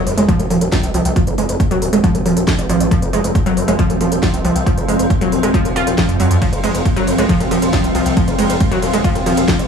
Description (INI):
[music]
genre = driving peak-time techno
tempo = 137 BPM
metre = 4/4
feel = straight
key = unclear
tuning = A4 = 439 Hz
[part]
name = gritty driven synth bass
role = bass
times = 0.0-9.7 s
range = Eb1 to F2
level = -19 LUFS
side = equal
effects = sidechain pumping
[part]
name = swarming drone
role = drone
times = 1.3-9.7 s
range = F3 to C4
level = -23 LUFS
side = right 1 dB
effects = built-in reverb, sidechain pumping
[part]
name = impact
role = sound effects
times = 0.0-1.2 s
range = none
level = -30 LUFS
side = equal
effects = none
[part]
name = deep dark ambient pad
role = texture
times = 1.0-9.7 s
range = C4 to C6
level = -23 LUFS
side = left 2 dB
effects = chorus, built-in reverb, sidechain pumping
[part]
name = techno drum kit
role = drums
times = 0.1-9.7 s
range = hi-hat, ride cymbal, snare drum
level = -25 LUFS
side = right 1 dB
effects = overdrive
[part]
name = warbly dusty pluck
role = riff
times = 0.2-9.5 s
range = F3 to F4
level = -18 LUFS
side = right 1 dB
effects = chorus, sidechain pumping, tape echo
[part]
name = electronic kick drum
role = drums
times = 0.3-9.6 s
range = none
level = -18 LUFS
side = equal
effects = overdrive
[sound]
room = light reverb, digital ambience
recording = small room ambience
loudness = -13 LUFS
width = side -6 dB against mid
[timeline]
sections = 0.0-9.7 A section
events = impact 0.0-1.2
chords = 0.0 F5